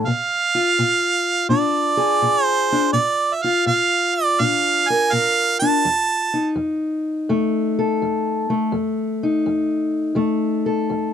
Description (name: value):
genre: acoustic country blues, solo or duo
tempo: 83 BPM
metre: 4/4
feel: swing 67% on 8ths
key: F mixolydian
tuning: A4 = 440 Hz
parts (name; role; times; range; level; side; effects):
- fingerpicked steel-string acoustic guitar; accompaniment; 0.0-11.1 s; F2 to Bb4; -20 LUFS; left 2 dB; none
- bright harmonica; melody; 0.1-6.5 s; D5 to A5; -18 LUFS; right 4 dB; none
room: light reverb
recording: dry, close 1970s-style studio recording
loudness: -17 LUFS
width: side -8 dB against mid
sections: 0.0-11.1 A section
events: none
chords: 0.1 Bb7; 5.8 F7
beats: | 0.06 0.79 1.51 2.23 | 2.95 3.67 4.40 5.12 | 5.84 6.56 7.29 8.01 | 8.73 9.45 10.18 10.90